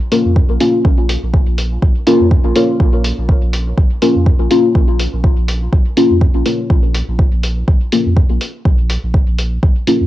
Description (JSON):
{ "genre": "dub techno", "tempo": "123 BPM", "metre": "4/4", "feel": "swing 55% on 16ths", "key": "Bb minor", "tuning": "A4 = 440 Hz", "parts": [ { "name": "deep mellow chord stab", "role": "stabs", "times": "0.0-10.1 s", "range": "Bb3 to F4", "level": "-15 LUFS", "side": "left 1 dB", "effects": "chorus, phaser, cassette tape, sidechain pumping, dub echo" }, { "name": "electronic hi-hat", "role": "drums", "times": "0.1-10.0 s", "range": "none", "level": "-23 LUFS", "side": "equal", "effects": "cassette tape" }, { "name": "warm sub bass", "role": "bass", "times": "0.3-10.1 s", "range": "Bb1 to F2", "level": "-17 LUFS", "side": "equal", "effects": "sidechain pumping" }, { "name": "electronic kick drum", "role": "drums", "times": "0.4-9.7 s", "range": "none", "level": "-12 LUFS", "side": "equal", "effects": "cassette tape" } ], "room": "digital ambience", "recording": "home recording on cassette", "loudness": "-11 LUFS", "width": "side -15 dB against mid", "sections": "0.0-10.1 A section", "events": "filter sweep on synth stab 0.0-10.1", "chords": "0.0 Bbm" }